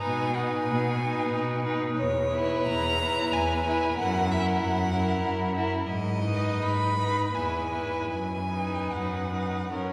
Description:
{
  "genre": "classical, slow romantic movement for string quartet",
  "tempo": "74-99 BPM",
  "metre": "3/4",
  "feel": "rubato",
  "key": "B major",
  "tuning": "A4 = 439 Hz",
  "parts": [
    { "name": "rich violin", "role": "melody", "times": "0.0-9.9 s", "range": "C#5 to B5", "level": "-32 LUFS", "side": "equal", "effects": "none" },
    { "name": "warm violin", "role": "second line", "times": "0.0-9.9 s", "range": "A#4 to B4", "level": "-36 LUFS", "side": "equal", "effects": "none" },
    { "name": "rich viola", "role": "accompaniment", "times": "0.0-9.9 s", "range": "C#4 to E4", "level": "-35 LUFS", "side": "equal", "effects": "none" },
    { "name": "clear cello", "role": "bass", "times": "0.0-9.9 s", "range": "E2 to B2", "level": "-32 LUFS", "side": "equal", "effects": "none" }
  ],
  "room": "wet cathedral reverb, RT60 4.6 s",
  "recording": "none",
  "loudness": "-27 LUFS",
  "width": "mono",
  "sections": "0.0-9.9 A section",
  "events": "none",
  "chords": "0.0 G#m/B; 2.0 C#m7/E; 4.0 F#7; 5.9 G#m; 7.4 E; 8.1 B/F#",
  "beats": "| 0.03 0.69 1.33 | 1.98 2.69 3.34 | 3.99 4.63 5.24 | 5.89 6.63 7.36 | 8.12 8.93 9.72"
}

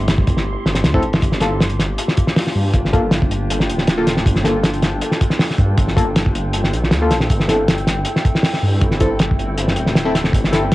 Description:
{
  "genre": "drum and bass, jungle",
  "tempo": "158 BPM",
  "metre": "4/4",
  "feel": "straight",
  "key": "G dorian",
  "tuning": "A4 = 440 Hz",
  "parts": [
    { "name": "warbly tape-like pad", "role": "sustained chords", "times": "0.0-10.7 s", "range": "A3 to A4", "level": "-26 LUFS", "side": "equal", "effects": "chorus, built-in reverb, cassette tape" },
    { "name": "detuned saw bass", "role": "bass", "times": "0.0-10.7 s", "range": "D1 to G2", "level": "-21 LUFS", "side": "equal", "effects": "tube saturation" },
    { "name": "wind-like tuned noise texture", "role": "texture", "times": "0.0-10.7 s", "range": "G5 to C6", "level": "-31 LUFS", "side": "equal", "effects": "built-in reverb, cassette tape" },
    { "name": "cloth-damped thuddy drum kit", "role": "drums", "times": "0.1-10.7 s", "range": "hi-hat, kick drum, snare drum", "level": "-16 LUFS", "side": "equal", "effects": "none" },
    { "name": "deep mellow chord stab", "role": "stabs", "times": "0.9-10.6 s", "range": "Bb3 to A4", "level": "-21 LUFS", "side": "left 2 dB", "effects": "chorus, cassette tape, dub echo" }
  ],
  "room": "light reverb",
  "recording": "home recording on cassette",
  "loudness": "-14 LUFS",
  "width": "side -18 dB against mid",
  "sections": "0.0-10.7 A section",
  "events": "none",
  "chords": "0.0 Am; 1.2 Gm7; 7.3 Am",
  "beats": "0.08 0.46 0.84 | 1.22 1.60 1.98 2.36 | 2.74 3.12 3.50 3.88 | 4.26 4.64 5.02 5.40 | 5.78 6.16 6.54 6.92 | 7.30 7.68 8.06 8.44 | 8.82 9.20 9.58 9.96 | 10.34 10.72"
}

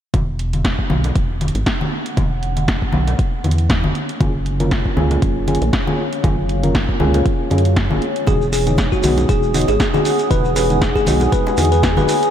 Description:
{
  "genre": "deep house",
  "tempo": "118 BPM",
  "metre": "4/4",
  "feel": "swing 55% on 16ths",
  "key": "E major",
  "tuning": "A4 = 440 Hz",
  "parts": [
    { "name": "rubbery square bass", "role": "bass", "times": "0.1-12.1 s", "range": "E1 to F#2", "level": "-19 LUFS", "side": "equal", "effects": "sidechain pumping" },
    { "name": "electronic kick drum", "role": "drums", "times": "0.1-11.9 s", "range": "none", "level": "-19 LUFS", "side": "equal", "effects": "none" },
    { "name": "punchy analog drum machine", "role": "drums", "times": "0.1-12.3 s", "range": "hi-hat, snare drum", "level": "-24 LUFS", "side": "equal", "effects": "none" },
    { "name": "congas and bongos", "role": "percussion", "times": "0.1-12.1 s", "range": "none", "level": "-24 LUFS", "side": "left 1 dB", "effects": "none" },
    { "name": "deep dark ambient pad", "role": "texture", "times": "1.6-12.3 s", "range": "G#4 to F#5", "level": "-26 LUFS", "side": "equal", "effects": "chorus, built-in reverb, sidechain pumping" },
    { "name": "mellow FM electric piano", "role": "stabs", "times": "4.2-12.1 s", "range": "G#3 to A#4", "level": "-22 LUFS", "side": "equal", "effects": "chorus, sidechain pumping, tape echo" },
    { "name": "bell-like tine electric piano", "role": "melody", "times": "8.3-12.2 s", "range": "F#4 to B4", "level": "-21 LUFS", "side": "left 1 dB", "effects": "fast stereo tremolo, diffuse ambient delay" },
    { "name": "dark analog pad", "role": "sustained chords", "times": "8.3-12.3 s", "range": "G#4 to D#6", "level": "-24 LUFS", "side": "left 1 dB", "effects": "chorus, sidechain pumping" },
    { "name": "shekere", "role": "percussion", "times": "8.3-12.3 s", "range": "none", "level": "-31 LUFS", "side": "right 2 dB", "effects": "none" }
  ],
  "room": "moderate cathedral reverb, RT60 3.9 s",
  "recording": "dreamy mix soaked in reverb",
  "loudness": "-15 LUFS",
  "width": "side -9 dB against mid",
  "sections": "0.1-12.3 A section",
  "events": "none",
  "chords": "0.1 Eadd9; 4.2 F#maj9; 8.3 Emaj9",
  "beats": "| 0.14 0.65 1.16 1.66 | 2.17 2.68 3.19 3.70 | 4.21 4.71 5.22 5.73 | 6.24 6.75 7.26 7.76 | 8.27 8.78 9.29 9.80 | 10.31 10.82 11.32 11.83"
}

